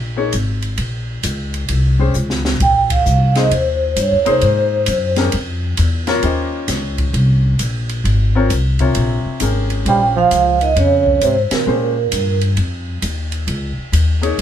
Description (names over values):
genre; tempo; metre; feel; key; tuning
modal jazz; 132 BPM; 4/4; swing 66% on 8ths; Bb dorian; A4 = 442 Hz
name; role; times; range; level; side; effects
upright bass; bass; 0.0-14.4 s; Ab1 to Bb2; -17 LUFS; left 1 dB; none
warm baby grand piano; accompaniment; 0.2-14.4 s; C3 to F5; -20 LUFS; left 4 dB; none
open jazz drum kit; drums; 0.3-14.4 s; hi-hat, kick drum, ride cymbal, snare drum; -24 LUFS; right 1 dB; none
vibraphone with medium mallets; melody; 2.6-5.2, 9.9-12.4 s; Bb4 to G5; -15 LUFS; right 3 dB; none
mellow trombone; second line; 9.9-12.4 s; Bb2 to G3; -20 LUFS; right 4 dB; none
room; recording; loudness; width
moderate studio ambience, RT60 0.5 s; band playing live in one room; -14 LUFS; side -10 dB against mid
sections
0.0-14.4 A section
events
drum fill 2.1-2.6; band accent 2.8, 11.4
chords
0.0 Bbm7; 2.6 Abadd9/Bb; 9.9 Bbm7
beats
0.33 | 0.79 1.24 1.70 2.15 | 2.60 3.06 3.51 3.96 | 4.42 4.87 5.33 5.78 | 6.23 6.69 7.14 7.59 | 8.05 8.50 8.95 9.40 | 9.86 10.31 10.76 11.22 | 11.67 12.12 12.57 13.03 | 13.48 13.93 14.39